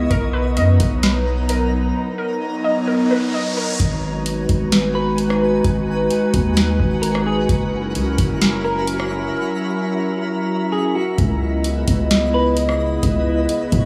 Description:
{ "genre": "hip hop, atmospheric cloud-rap", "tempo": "130 BPM", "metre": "4/4", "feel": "half-time", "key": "G# minor", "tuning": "A4 = 442 Hz", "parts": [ { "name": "warbly tape-like pad", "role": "sustained chords", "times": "0.0-13.9 s", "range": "C#3 to D#5", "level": "-23 LUFS", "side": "equal", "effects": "chorus, built-in reverb, sidechain pumping" }, { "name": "warbly dusty pluck", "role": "arpeggios", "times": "0.0-3.8 s", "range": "E4 to D#5", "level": "-27 LUFS", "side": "equal", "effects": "chorus, phaser, tape echo" }, { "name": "long sustained 808-style bass", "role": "bass", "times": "0.0-13.9 s", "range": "F#1 to G#2", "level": "-23 LUFS", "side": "equal", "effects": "none" }, { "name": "twinkling granular texture", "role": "texture", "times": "0.0-13.9 s", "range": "D#4 to A#5", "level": "-32 LUFS", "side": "equal", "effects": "built-in reverb" }, { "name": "booming analog drum machine", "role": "drums", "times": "0.1-13.9 s", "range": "hi-hat, kick drum, rim click, snare drum", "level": "-23 LUFS", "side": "equal", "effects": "none" }, { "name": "riser", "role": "sound effects", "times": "2.5-3.8 s", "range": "none", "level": "-31 LUFS", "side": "equal", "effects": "none" }, { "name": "semi-hollow electric guitar", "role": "melody", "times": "4.9-12.6 s", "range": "F#4 to B4", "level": "-28 LUFS", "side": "equal", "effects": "subtle chorus, tape echo" } ], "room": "light reverb", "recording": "studio reverb", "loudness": "-19 LUFS", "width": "mono", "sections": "0.0-3.8 A section; 3.8-13.9 B section", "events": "riser 2.5-3.8; drums muted 9.3-11.2", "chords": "0.1 Bmaj7; 3.8 G#m7; 7.5 F#7; 11.2 C#m9" }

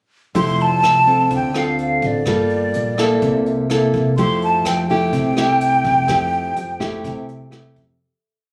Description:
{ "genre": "bossa nova", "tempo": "125 BPM", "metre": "4/4", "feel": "straight", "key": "F major", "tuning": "A4 = 438 Hz", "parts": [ { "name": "nylon-string guitar", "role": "accompaniment", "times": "0.3-8.0 s", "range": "C3 to A4", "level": "-21 LUFS", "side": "equal", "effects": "none" }, { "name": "upright bass", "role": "bass", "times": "0.3-8.0 s", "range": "F1 to F2", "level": "-30 LUFS", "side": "equal", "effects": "none" }, { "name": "vintage brush drum kit", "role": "drums", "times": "0.3-7.9 s", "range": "hi-hat, kick drum, rim click", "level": "-32 LUFS", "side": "equal", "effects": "none" }, { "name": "breathy hollow jazz flute", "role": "melody", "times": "0.4-7.5 s", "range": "D5 to C6", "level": "-20 LUFS", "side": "equal", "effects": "plate reverb" } ], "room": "light reverb", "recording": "recorded on a phone in the room, studio ambience, compression", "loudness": "-18 LUFS", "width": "mono", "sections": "0.3-8.0 A section", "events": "fade-out 6.1-8.0", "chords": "0.3 Fmaj9; 1.3 Dm7; 2.3 Gm9; 3.2 C6; 4.2 Fmaj9" }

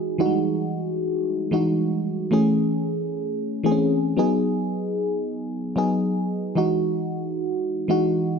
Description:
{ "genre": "afrobeats", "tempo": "113 BPM", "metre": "4/4", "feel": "swing 55% on 16ths", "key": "E major", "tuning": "A4 = 440 Hz", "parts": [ { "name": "mellow FM electric piano", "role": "solo", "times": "0.0-8.4 s", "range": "E3 to G#4", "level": "-21 LUFS", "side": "equal", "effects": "chorus, phaser" } ], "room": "moderate studio reverb, RT60 0.6 s", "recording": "none", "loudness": "-21 LUFS", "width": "side -6 dB against mid", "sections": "0.0-6.6 A section; 6.6-8.4 B section", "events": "none", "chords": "0.0 Emaj9; 2.3 Amaj7; 4.2 G#m7; 6.6 Emaj9" }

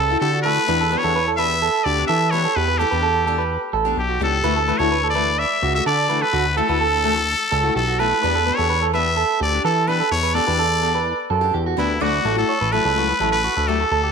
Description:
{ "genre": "highlife guitar band", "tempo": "127 BPM", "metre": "4/4", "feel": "straight", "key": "D major", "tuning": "A4 = 439 Hz", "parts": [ { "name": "trumpet with straight mute", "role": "melody", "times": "0.0-14.1 s", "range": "E4 to E5", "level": "-21 LUFS", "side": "left 4 dB", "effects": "none" }, { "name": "clean electric guitar", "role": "arpeggios", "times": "0.0-14.1 s", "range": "F#4 to D5", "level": "-21 LUFS", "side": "right 9 dB", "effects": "slapback echo" }, { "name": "fat analog bass", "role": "bass", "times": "0.0-14.1 s", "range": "A1 to E3", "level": "-24 LUFS", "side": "left 2 dB", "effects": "none" }, { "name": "picked steel-string acoustic guitar", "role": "accompaniment", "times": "0.1-13.8 s", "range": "E3 to G4", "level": "-27 LUFS", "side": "left 14 dB", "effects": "none" } ], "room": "moderate echo chamber reverb, RT60 1.8 s, small room ambience", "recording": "1960s-style stereo with parts hard left and right", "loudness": "-17 LUFS", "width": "side -6 dB against mid", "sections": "0.0-12.0 A section; 12.0-14.1 B section", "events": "none", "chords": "0.0 Dadd9; 0.7 Em7; 4.4 Dadd9; 8.2 Em7; 12.0 Dadd9" }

